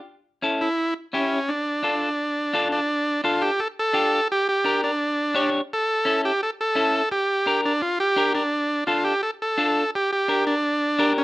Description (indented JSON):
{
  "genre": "latin",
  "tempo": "170 BPM",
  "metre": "4/4",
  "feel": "straight",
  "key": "D harmonic minor",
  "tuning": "A4 = 440 Hz",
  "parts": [
    { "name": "electric guitar at the edge of break-up", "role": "accompaniment", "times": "0.4-11.2 s", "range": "C#4 to C#5", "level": "-23 LUFS", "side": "left 1 dB", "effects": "none" },
    { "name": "overdriven combo organ", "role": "melody", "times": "0.6-11.2 s", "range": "C#4 to A4", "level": "-22 LUFS", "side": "right 1 dB", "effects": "none" }
  ],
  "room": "moderate studio reverb, RT60 0.6 s",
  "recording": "rough home demo mix",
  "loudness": "-20 LUFS",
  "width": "side -18 dB against mid",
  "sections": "0.0-2.9 A section; 2.9-11.2 B section",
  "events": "none",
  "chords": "0.1 A; 1.5 Dm; 4.3 Gm; 5.7 A; 7.1 Gm; 8.5 Dm; 9.9 Gm"
}